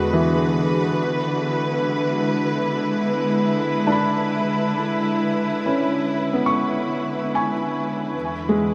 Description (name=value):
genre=ambient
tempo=67 BPM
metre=4/4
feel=straight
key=E mixolydian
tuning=A4 = 440 Hz
part: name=muted studio string section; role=sustained chords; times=0.0-8.7 s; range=E2 to B4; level=-24 LUFS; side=equal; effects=low-pass filter
part: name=felt-muted upright piano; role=arpeggios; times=0.0-8.7 s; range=E3 to C#6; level=-26 LUFS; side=equal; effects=tape echo
part: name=warm sub bass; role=bass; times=0.0-0.9 s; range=E2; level=-36 LUFS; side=equal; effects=none
room=wet huge ambient reverb, RT60 8.4 s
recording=none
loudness=-22 LUFS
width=mono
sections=1.0-8.7 A section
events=none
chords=0.0 Bm/E; 1.0 E7; 8.1 N.C.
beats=0.09 | 0.98 1.88 2.77 3.67 | 4.56 5.46 6.35 7.25 | 8.14